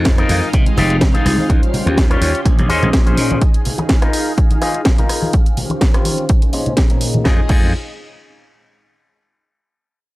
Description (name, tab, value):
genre	filtered disco house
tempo	125 BPM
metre	4/4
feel	swing 54% on 16ths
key	F minor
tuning	A4 = 441 Hz
part	mellow synth brass	accompaniment	0.0-3.4, 7.2-7.7 s	G3 to F5	-24 LUFS	left 1 dB	chorus, phaser, sidechain pumping, low-pass filter
part	string machine, full ensemble	sustained chords	0.0-7.5 s	Bb2 to C6	-25 LUFS	right 1 dB	ensemble chorus, vintage 12-bit sampler grit, sidechain pumping, low-pass filter
part	slap bass	bass	0.0-3.4, 7.3-7.7 s	F1 to C3	-18 LUFS	equal	sidechain pumping, low-pass filter
part	maracas and congas	percussion	0.0-7.2 s	none	-23 LUFS	equal	sidechain pumping on perc, low-pass filter on perc
part	electric guitar with an envelope filter	riff	0.1-7.7 s	Bb2 to Db5	-20 LUFS	left 2 dB	sidechain pumping, low-pass filter
part	electronic kick drum	drums	0.1-7.6 s	none	-14 LUFS	equal	none
part	house drum kit	drums	0.1-7.6 s	crash cymbal, hi-hat, rim click, snare drum	-22 LUFS	equal	overdrive, sidechain pumping on hats, sidechain pumping on cymbals
room	little or no reverb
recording	dry, gritty hardware recording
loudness	-12 LUFS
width	side -19 dB against mid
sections	0.0-7.3 A section; 7.3-9.2 B section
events	filter sweep 0.0-7.3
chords	0.0 Fm7; 1.5 Eb13; 2.5 Bbm11; 3.4 Fm7; 5.3 Eb13; 6.3 Bbm11; 7.3 Fm7